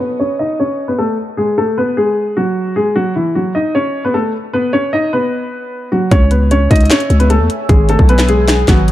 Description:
hip hop, trap; 152 BPM; 4/4; half-time; C# minor; A4 = 441 Hz
dark grand piano; melody; 0.0-8.9 s; E3 to D#5; -14 LUFS; left 1 dB; low-pass filter
deep dark ambient pad; sustained chords; 6.5-8.9 s; B4 to E6; -27 LUFS; equal; chorus, built-in reverb
growling 808-style bass; bass; 6.1-8.9 s; G#1 to E2; -12 LUFS; equal
trap drum kit; drums; 6.1-8.9 s; handclaps, hi-hat, kick drum, snare drum; -12 LUFS; equal
digital ambience; dark, warm production; -11 LUFS; side -14 dB against mid
0.0-6.1 A section; 6.1-8.9 B section
filter sweep on grand piano 0.0-6.1
0.0 Aadd9; 1.4 G#m7; 3.0 F#m; 4.5 B; 6.1 C#m; 7.7 G#m7

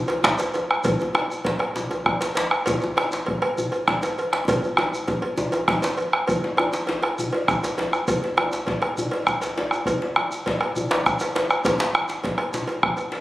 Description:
west african traditional, West African drum ensemble; 134 BPM (dotted quarters); 12/8; straight
bombo; percussion; 0.1-13.2 s; -24 LUFS; equal
cowbell; percussion; 0.1-13.2 s; -27 LUFS; equal
djembe; percussion; 0.1-12.7 s; -28 LUFS; equal
shekere; percussion; 0.1-13.1 s; -37 LUFS; equal
djembe; percussion; 0.2-13.2 s; -30 LUFS; left 2 dB
wet scoring stage reverb, RT60 1.9 s; recorded on a phone in the room, club reverb; -21 LUFS; side -16 dB against mid
0.0-6.3 A section; 6.3-13.2 A section
speeding up 0.0-13.2; drum fill 4.5-6.3

